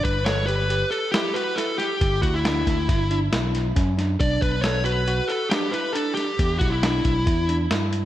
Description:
progressive instrumental, band music in an uneven meter; 137 BPM; 5/4; straight; G lydian; A4 = 442 Hz
fuzz lead guitar; melody; 0.0-7.5 s; E4 to D5; -25 LUFS; left 1 dB; distortion, diffuse ambient delay
tine electric piano; arpeggios; 0.0-8.0 s; C#4 to A4; -29 LUFS; right 2 dB; diffuse ambient delay
overdriven fingered electric bass; bass; 0.0-8.1 s; G1 to G2; -24 LUFS; equal
lo-fi sampler-style drum kit; drums; 0.0-8.0 s; hi-hat, kick drum, snare drum; -26 LUFS; equal
moderate lush hall reverb, RT60 1.6 s, digital ambience; dreamy mix soaked in reverb; -20 LUFS; side -13 dB against mid
0.0-8.1 A section
0.0 G6; 4.2 Bm; 6.4 Em7
0.27 0.70 1.14 1.58 | 2.01 2.45 2.89 3.32 3.76 | 4.20 4.64 5.07 5.51 5.95 | 6.39 6.83 7.27 7.71

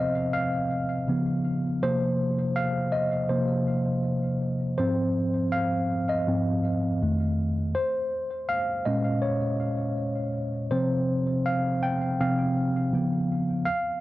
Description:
R&B; 81 BPM; 4/4; swing 56% on 16ths; A4 = 440 Hz
mellow tine electric piano; solo; 0.0-14.0 s; F2 to G5; -24 LUFS; equal; medium stereo tremolo, cassette tape, tape echo
light reverb; home recording on cassette; -24 LUFS; side -16 dB against mid
0.0-14.0 A section
tine electric piano solo 0.0-14.0
0.0 Cmadd11; 1.1 Db7; 1.8 C7sus4; 4.8 Ab6; 7.0 F7; 7.7 Bbm9; 10.7 Csus4; 12.9 Db7
0.33 1.07 | 1.81 2.55 3.29 4.03 | 4.77 5.51 6.25 6.99 | 7.73 8.47 9.21 9.96 | 10.70 11.44 12.18 12.92 | 13.66

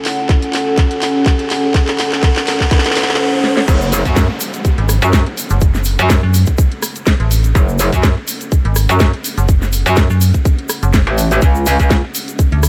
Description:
bass house; 124 BPM; 4/4; swing 55% on 16ths; F# minor; A4 = 440 Hz
dark analog pad; sustained chords; 0.0-12.7 s; C#4 to F#5; -24 LUFS; equal; chorus, sidechain pumping
garage drum kit; drums; 0.0-12.7 s; crash cymbal, handclaps, hi-hat, rim click, snare drum; -22 LUFS; equal
riser and downlifter; sound effects; 0.1-7.5 s; -28 LUFS; equal
electronic kick drum; drums; 0.3-12.5 s; -15 LUFS; equal
metallic wobble bass; bass; 3.7-12.0 s; F#1 to F#2; -16 LUFS; equal; distortion, chorus, overdrive, sidechain pumping
tube shaker; percussion; 3.7-12.7 s; -27 LUFS; equal
metallic FM bass; bass; 4.8-12.7 s; F#1 to F#2; -15 LUFS; equal; overdrive, sidechain pumping
moderate huge ambient reverb, RT60 7.6 s; dreamy mix soaked in reverb; -14 LUFS; mono
0.0-3.7 A section; 3.7-12.7 B section
build-up 0.0-3.7; drum fill 0.0-3.2, 3.4; drop 3.7-12.7
0.0 F#m; 11.4 C#sus4
0.29 0.78 1.26 | 1.74 2.23 2.71 3.19 | 3.68 4.16 4.65 5.13 | 5.62 6.10 6.58 7.07 | 7.55 8.03 8.52 9.00 | 9.49 9.97 10.45 10.94 | 11.42 11.90 12.39

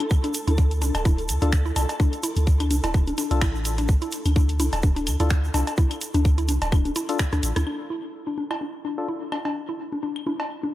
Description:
minimal techno; 127 BPM; 4/4; swing 55% on 16ths; D minor; A4 = 439 Hz
garage drum kit; drums; 0.0-7.6 s; finger snaps, hi-hat, rim click; -31 LUFS; equal
bongos, claves and cowbell; percussion; 0.0-10.7 s; -30 LUFS; left 1 dB; overdrive, diffuse ambient delay
flickering grainy texture; texture; 0.0-7.7 s; A4; -38 LUFS; right 1 dB; built-in reverb, ensemble chorus, sidechain pumping
electronic kick drum; drums; 0.1-7.3 s; -20 LUFS; equal
egg shaker; percussion; 0.1-7.6 s; -36 LUFS; right 3 dB
mallet-like synth pluck; riff; 0.2-10.7 s; D4 to E4; -30 LUFS; left 1 dB; chorus, sidechain pumping, diffuse ambient delay
punchy sub bass; bass; 0.5-7.6 s; D1 to D2; -23 LUFS; equal; sidechain pumping
percussive organ stab; stabs; 1.4-9.1 s; D4 to A4; -33 LUFS; left 4 dB; chorus, diffuse ambient delay
light reverb; -21 LUFS; side -14 dB against mid
0.0-7.7 A section; 7.7-10.7 B section
drop 0.0-7.7; drum fill 7.2-7.7; filter sweep on synth arpeggio sound 7.7-10.7
0.0 D5; 7.7 N.C.
| 0.11 0.58 1.05 1.53 | 2.00 2.47 2.94 3.42 | 3.89 4.36 4.83 5.30 | 5.78 6.25 6.72 7.20 | 7.67 8.14 8.61 9.09 | 9.56 10.03 10.50

